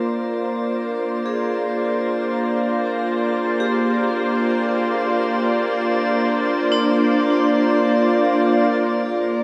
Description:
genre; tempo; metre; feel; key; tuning
ambient; free time; none; none; Bb mixolydian; A4 = 441 Hz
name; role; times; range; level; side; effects
warm analog pad; sustained chords; 0.0-9.4 s; Bb3 to D5; -21 LUFS; equal; chorus
vibraphone with hard mallets; arpeggios; 0.0-9.4 s; D4 to Bb4; -28 LUFS; equal; tape echo
organ-like drone; drone; 0.2-9.4 s; Bb3 to F4; -31 LUFS; equal; none
drifting glass-harmonics texture; texture; 0.0-9.4 s; D4 to D5; -31 LUFS; equal; chorus, built-in reverb
warm sub bass; bass; 9.1-9.4 s; Bb1; -64 LUFS; equal; none
room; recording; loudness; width
wet shimmer reverb, RT60 6.7 s; none; -20 LUFS; mono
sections
0.0-9.1 A section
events
fade-in on vibraphone 0.0-9.1; fade-in on synth texture 0.0-9.1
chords
0.0 Bb7

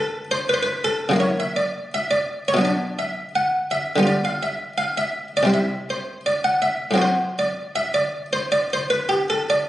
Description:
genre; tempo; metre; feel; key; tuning
classical, baroque-style suite movement for harpsichord; 82 BPM; 4/4; rubato; unclear; A4 = 440 Hz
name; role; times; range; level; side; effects
buff-stop harpsichord; solo; 0.0-9.7 s; E2 to F#5; -20 LUFS; equal; none
room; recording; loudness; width
wet stone room reverb, RT60 1.1 s; recorded on a phone in the room, studio reverb, compression, nothing above 10.3 kHz; -19 LUFS; side -14 dB against mid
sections
0.0-9.7 A section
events
none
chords
0.0 Em; 1.2 F#7/C#; 2.6 Bm; 4.0 G7/D; 5.5 C; 7.0 F#dim/A

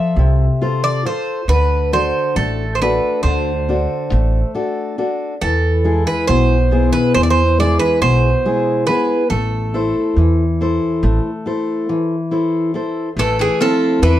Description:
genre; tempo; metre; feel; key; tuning
greek folk, Greek bouzouki band; 139 BPM (eighths); 9/8; straight; A harmonic minor; A4 = 440 Hz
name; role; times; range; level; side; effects
Greek bouzouki; melody; 0.0-14.2 s; G#4 to E5; -18 LUFS; right 3 dB; plate reverb
fingerpicked steel-string acoustic guitar; accompaniment; 0.0-14.2 s; B2 to C5; -18 LUFS; left 2 dB; none
upright bass; bass; 0.2-14.2 s; A1 to E2; -17 LUFS; equal; none
Greek bouzouki; second line; 13.2-14.2 s; E3 to F3; -21 LUFS; left 5 dB; none
room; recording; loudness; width
moderate studio reverb, RT60 0.5 s; dark, warm production; -14 LUFS; side -13 dB against mid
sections
0.0-13.2 A section; 13.2-14.2 B section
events
speeding up 0.0-14.2; break 11.2-13.2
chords
0.0 F; 1.5 D; 5.4 E; 9.3 Am

